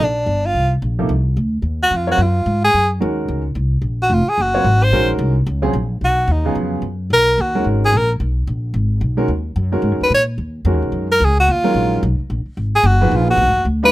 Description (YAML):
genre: modal jazz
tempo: 220 BPM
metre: 4/4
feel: swing 60% on 8ths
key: G# dorian from 6.0 s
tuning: A4 = 440 Hz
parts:
  - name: breathy tenor saxophone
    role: melody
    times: 0.0-13.9 s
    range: D4 to C#5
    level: -15 LUFS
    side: equal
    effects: none
  - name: upright bass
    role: bass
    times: 0.0-13.9 s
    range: F1 to A#2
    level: -18 LUFS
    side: equal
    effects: none
  - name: clear baby grand piano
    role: accompaniment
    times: 1.0-13.9 s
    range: A#2 to Db5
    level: -20 LUFS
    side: right 1 dB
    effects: none
room: little or no reverb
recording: close, detailed microphones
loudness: -14 LUFS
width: side -16 dB against mid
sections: 0.0-6.0 A section; 6.0-13.9 A section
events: tenor saxophone solo 0.0-13.9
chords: 0.0 C7sus2; 1.6 Ebm11; 6.0 G#m9